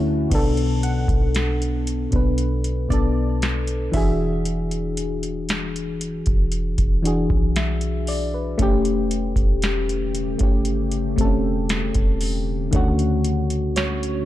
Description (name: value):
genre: contemporary R&B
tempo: 58 BPM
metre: 4/4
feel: straight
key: B minor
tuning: A4 = 442 Hz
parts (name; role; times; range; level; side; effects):
- mellow FM electric piano; accompaniment; 0.0-14.3 s; B2 to E5; -23 LUFS; left 2 dB; chorus
- deep dark ambient pad; sustained chords; 0.0-0.3, 9.2-14.3 s; C#3 to G4; -33 LUFS; equal; chorus, built-in reverb, sidechain pumping
- soft 808-style bass; bass; 0.0-14.3 s; E1 to D2; -25 LUFS; equal; none
- glassy wavetable pluck; texture; 0.0-6.0, 13.8-14.3 s; C#5 to A5; -34 LUFS; right 4 dB; chorus, tape echo
- booming analog drum machine; drums; 0.3-14.3 s; crash cymbal, hi-hat, kick drum, snare drum; -23 LUFS; equal; none
room: little or no reverb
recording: dark, warm production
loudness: -19 LUFS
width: side -14 dB against mid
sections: 0.3-14.3 A section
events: none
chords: 0.3 Bm7; 3.9 E9; 8.6 A7/E; 12.7 Dmaj7